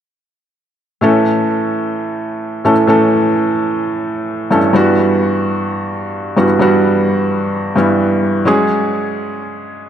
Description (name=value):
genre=EDM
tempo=129 BPM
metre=4/4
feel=straight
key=A major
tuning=A4 = 442 Hz
part: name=felt-muted upright piano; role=accompaniment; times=1.0-9.9 s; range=G2 to A4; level=-12 LUFS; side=equal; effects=dub echo
room=wet concert hall reverb, RT60 1.9 s, small room ambience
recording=none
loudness=-12 LUFS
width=side -9 dB against mid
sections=1.0-9.9 A section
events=none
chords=1.0 A; 4.7 Emadd9/G; 8.5 F#sus2